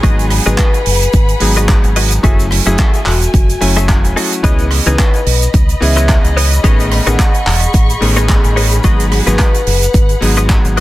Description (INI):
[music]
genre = nu-disco, nu disco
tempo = 109 BPM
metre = 4/4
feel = swing 56% on 16ths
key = unclear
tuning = A4 = 436 Hz
[part]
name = bright electric grand piano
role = accompaniment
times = 0.0-10.8 s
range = D#3 to G#5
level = -19 LUFS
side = left 1 dB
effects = sidechain pumping, tape echo
[part]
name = warm symphonic string section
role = sustained chords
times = 0.0-10.8 s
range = A3 to C#6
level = -23 LUFS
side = left 1 dB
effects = sidechain pumping
[part]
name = direct-recorded clean electric guitar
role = riff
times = 0.0-10.8 s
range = E4 to E5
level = -21 LUFS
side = left 3 dB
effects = analog chorus, tape echo
[part]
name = fingered electric bass with an envelope filter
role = bass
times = 0.0-10.8 s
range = E1 to C#2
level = -14 LUFS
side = equal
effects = tube saturation, sidechain pumping
[part]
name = electronic kick drum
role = drums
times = 0.0-10.6 s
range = none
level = -11 LUFS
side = equal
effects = none
[part]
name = tight funk drum kit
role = drums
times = 0.0-10.8 s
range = handclaps, hi-hat, rim click, shaker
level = -18 LUFS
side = right 3 dB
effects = none
[part]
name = vibraphone with soft mallets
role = melody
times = 0.5-10.0 s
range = F#4 to F#5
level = -22 LUFS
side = left 2 dB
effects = tape echo
[sound]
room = small room ambience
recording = dense, heavily limited modern master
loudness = -9 LUFS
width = side -16 dB against mid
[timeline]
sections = 0.0-10.8 A section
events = none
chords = 0.0 G#m7; 2.2 F#m9; 4.4 C#m9; 6.6 Amaj9#11; 8.8 G#m7